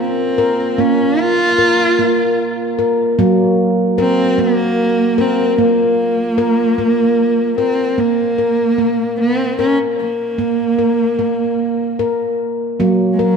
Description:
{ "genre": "world meditative, meditative tuned percussion", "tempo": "75 BPM", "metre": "3/4", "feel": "swing 55% on 16ths", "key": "unclear", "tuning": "A4 = 441 Hz", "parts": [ { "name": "dark cello", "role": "melody", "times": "0.0-13.4 s", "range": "Gb3 to F4", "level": "-17 LUFS", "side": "right 2 dB", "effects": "diffuse ambient delay" }, { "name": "dark French horn section", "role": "sustained chords", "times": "0.0-8.0 s", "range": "Bb3 to Bb4", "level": "-21 LUFS", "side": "equal", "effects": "stereo widening" }, { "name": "handpan", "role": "arpeggios", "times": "0.0-13.4 s", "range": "Gb3 to Bb4", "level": "-15 LUFS", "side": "equal", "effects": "none" } ], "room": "wet echo chamber reverb, RT60 1.9 s, studio reverb", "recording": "none", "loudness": "-13 LUFS", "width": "side -6 dB against mid", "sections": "0.0-8.0 A section; 8.0-13.4 B section", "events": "none", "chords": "0.0 Bb5; 3.2 Gb; 5.6 Bb5; 8.0 N.C.; 12.8 Gb", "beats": "| 0.79 1.59 2.39 | 3.19 3.99 4.79 | 5.59 6.39 7.19 | 7.99 8.79 9.59 | 10.39 11.19 11.99 | 12.80" }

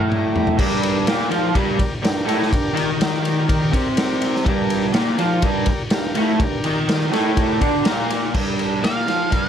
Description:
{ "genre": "garage rock duo or trio", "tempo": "124 BPM", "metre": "4/4", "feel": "straight", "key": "G minor", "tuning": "A4 = 439 Hz", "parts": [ { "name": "octave-fuzz lead guitar", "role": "melody", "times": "0.0, 8.8-9.5 s", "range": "F5", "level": "-25 LUFS", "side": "right 2 dB", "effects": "distortion, tape echo" }, { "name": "combo organ", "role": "sustained chords", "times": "0.0-9.5 s", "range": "G4 to Bb5", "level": "-29 LUFS", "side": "left 4 dB", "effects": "none" }, { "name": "raw garage guitar", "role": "riff", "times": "0.0-9.5 s", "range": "G2 to F4", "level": "-20 LUFS", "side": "right 1 dB", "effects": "overdrive" }, { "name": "raw garage drum kit", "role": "drums", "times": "0.0-9.4 s", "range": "crash cymbal, kick drum, ride cymbal, snare drum, toms", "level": "-21 LUFS", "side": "equal", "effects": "none" } ], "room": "light reverb", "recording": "none", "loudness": "-17 LUFS", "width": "side -8 dB against mid", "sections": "0.6-8.3 A section; 8.3-9.5 B section", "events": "drum fill 0.0-0.6; transistor combo organ fill 7.6-8.3; lead electric guitar solo 8.3-9.5", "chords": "0.0 Gm", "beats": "0.09 | 0.57 1.06 1.54 2.03 | 2.51 3.00 3.48 3.97 | 4.45 4.94 5.42 5.91 | 6.40 6.88 7.37 7.86 | 8.34 8.83 9.32" }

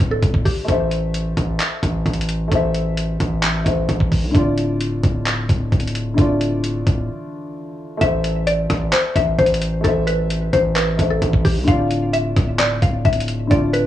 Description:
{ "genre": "hip hop, trap", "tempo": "131 BPM", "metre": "4/4", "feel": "half-time", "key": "A minor", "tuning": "A4 = 437 Hz", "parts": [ { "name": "mallet-like synth pluck", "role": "melody", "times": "0.0-0.7, 8.0-13.9 s", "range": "G4 to F5", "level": "-21 LUFS", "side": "left 2 dB", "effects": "chorus, tape echo" }, { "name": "dark baby grand piano", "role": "accompaniment", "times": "0.0-13.9 s", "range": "D3 to E5", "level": "-24 LUFS", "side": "left 2 dB", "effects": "none" }, { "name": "distorted 808-style bass", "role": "bass", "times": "0.0-13.9 s", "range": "D1 to C2", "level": "-21 LUFS", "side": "equal", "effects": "distortion" }, { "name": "dusty soul sampler-style drum kit", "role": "drums", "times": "0.0-13.8 s", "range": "handclaps, hi-hat, kick drum, rim click", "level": "-20 LUFS", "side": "equal", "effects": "none" } ], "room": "little or no reverb", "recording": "dry, gritty hardware recording, cassette tape, small room ambience", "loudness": "-16 LUFS", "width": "side -12 dB against mid", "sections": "0.0-8.0 A section; 8.0-13.9 B section", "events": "break 7.1-8.0", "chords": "0.0 Dm; 0.7 Am; 4.3 Dm; 8.0 Am; 11.7 Dm", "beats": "0.23 | 0.68 1.14 1.60 2.06 | 2.52 2.97 3.43 3.89 | 4.35 4.81 5.26 5.72 | 6.18 6.64 7.10 7.55 | 8.01 8.47 8.93 9.39 | 9.84 10.30 10.76 11.22 | 11.68 12.13 12.59 13.05 | 13.51" }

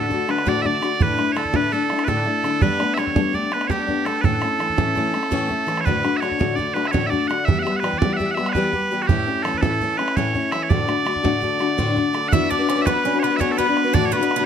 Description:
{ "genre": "celtic folk, Celtic slip jig", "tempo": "111 BPM (dotted quarters)", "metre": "9/8", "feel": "straight", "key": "D major", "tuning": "A4 = 436 Hz", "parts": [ { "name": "loud bright bagpipes", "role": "melody", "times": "0.0-14.4 s", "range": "F#4 to F#5", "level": "-22 LUFS", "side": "right 4 dB", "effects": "slapback echo" }, { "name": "picked steel-string acoustic guitar", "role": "accompaniment", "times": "0.0-14.5 s", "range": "D2 to B4", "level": "-22 LUFS", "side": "left 5 dB", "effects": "none" }, { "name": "bodhran", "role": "percussion", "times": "0.1-14.4 s", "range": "none", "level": "-23 LUFS", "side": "right 4 dB", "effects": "none" }, { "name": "Irish bouzouki", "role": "second line", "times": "12.3-14.5 s", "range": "B3 to E4", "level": "-27 LUFS", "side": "right 8 dB", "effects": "none" }, { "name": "mellow hollow tin whistle", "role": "second line", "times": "12.3-14.5 s", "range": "B5 to E6", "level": "-27 LUFS", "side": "left 7 dB", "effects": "none" } ], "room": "light reverb", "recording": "close, detailed microphones", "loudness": "-18 LUFS", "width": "side -8 dB against mid", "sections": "0.0-12.3 A section; 12.3-14.5 B section", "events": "none", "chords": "0.0 D; 1.0 Asus4; 2.6 Gadd9; 4.2 A; 5.9 D; 7.5 Em; 9.1 A; 10.7 D; 12.3 Bm; 13.9 Dadd9/A", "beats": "0.47 | 1.01 1.54 2.08 | 2.62 3.16 3.70 | 4.24 4.78 5.32 | 5.86 6.40 6.94 | 7.48 8.02 8.55 | 9.09 9.63 10.17 | 10.71 11.25 11.79 | 12.32 12.86 13.40 | 13.94" }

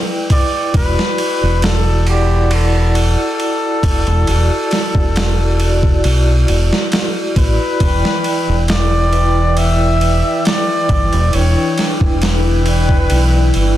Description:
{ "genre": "trip hop", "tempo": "68 BPM", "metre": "4/4", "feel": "straight", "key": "E minor", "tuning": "A4 = 442 Hz", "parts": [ { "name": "vibraphone with medium hard mallets", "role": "accompaniment", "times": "0.0-13.8 s", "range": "D4 to G5", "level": "-20 LUFS", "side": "equal", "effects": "tremolo, vintage 12-bit sampler grit, low-pass filter, tape echo" }, { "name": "trumpet with bucket mute", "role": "melody", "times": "0.3-13.8 s", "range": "G4 to E5", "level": "-20 LUFS", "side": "equal", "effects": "tape echo" }, { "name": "boom bap sampler-style drum kit", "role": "drums", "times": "0.3-13.8 s", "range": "kick drum, ride cymbal, snare drum", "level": "-18 LUFS", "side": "equal", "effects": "none" }, { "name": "deep dub fingered electric bass", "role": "bass", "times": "0.7-13.8 s", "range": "E1 to B1", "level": "-14 LUFS", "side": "equal", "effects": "none" }, { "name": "string machine, cellos", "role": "sustained chords", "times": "7.8-13.8 s", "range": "E4", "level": "-21 LUFS", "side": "left 1 dB", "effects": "ensemble chorus" } ], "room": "little or no reverb", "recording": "dense, heavily limited modern master, vinyl crackle", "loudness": "-12 LUFS", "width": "side -13 dB against mid", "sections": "0.0-13.8 A section", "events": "none", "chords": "0.0 Em7; 0.7 Dadd9/E; 7.8 Em7", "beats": "| 0.75 1.63 2.51 3.40 | 4.28 5.16 6.04 6.92 | 7.81 8.69 9.57 10.45 | 11.34 12.22 13.10" }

